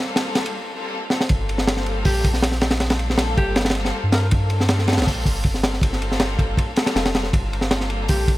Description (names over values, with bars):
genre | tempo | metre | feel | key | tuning
drum and bass, jungle | 159 BPM | 4/4 | straight | G minor | A4 = 440 Hz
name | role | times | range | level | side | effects
clear studio string section | sustained chords | 0.0-8.4 s | G3 to A4 | -28 LUFS | left 2 dB | none
crunchy breakbeat drum kit | drums | 0.2-8.4 s | hi-hat, kick drum, ride cymbal, snare drum | -20 LUFS | equal | none
soft dub sub bass | bass | 1.3-8.4 s | F1 to G2 | -23 LUFS | equal | tube saturation
clear alto saxophone | melody | 2.1-4.3, 8.1-8.3 s | G4 to Bb4 | -29 LUFS | equal | dub echo
room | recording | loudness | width
little or no reverb | none | -18 LUFS | side -17 dB against mid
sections
0.0-1.3 A section; 1.3-8.4 B section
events
build-up 0.0-1.3; drum fill 0.0-0.5, 1.1; break 0.5-1.3; drop 1.3-8.4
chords
0.0 Gm11